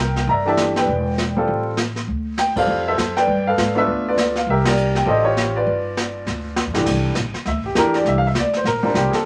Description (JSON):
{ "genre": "jazz piano trio", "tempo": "201 BPM", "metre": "4/4", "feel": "swing 61% on 8ths", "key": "C major", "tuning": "A4 = 441 Hz", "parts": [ { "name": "clear grand piano", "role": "melody", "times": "0.0-9.3 s", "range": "C2 to Bb5", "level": "-21 LUFS", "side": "equal", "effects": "none" }, { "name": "upright bass", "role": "bass", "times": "0.0-9.2 s", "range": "E1 to Ab2", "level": "-26 LUFS", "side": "equal", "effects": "none" }, { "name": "jazz brush drum kit", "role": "drums", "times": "0.2-9.3 s", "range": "brushed snare drum, crash cymbal, hi-hat, kick drum, ride cymbal, snare drum", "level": "-27 LUFS", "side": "equal", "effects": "none" } ], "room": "moderate studio ambience, RT60 0.5 s", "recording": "vinyl crackle", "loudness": "-20 LUFS", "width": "mono", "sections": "0.0-6.9 A section; 6.9-9.3 B section", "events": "band accent 2.5, 4.6; drum fill 6.3-6.9; grand piano solo 6.9-9.3", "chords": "0.0 C9; 0.9 Em7; 1.5 Am7; 2.1 Dm7; 3.3 G9; 4.5 Csus2; 5.1 A7alt; 5.7 G7; 6.9 C9", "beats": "0.28 0.58 | 0.88 1.18 1.48 1.78 | 2.08 2.38 2.68 2.98 | 3.27 3.57 3.87 4.17 | 4.47 4.77 5.07 5.37 | 5.67 5.96 6.26 6.56 | 6.86 7.16 7.46 7.76 | 8.06 8.35 8.65 8.95 | 9.25" }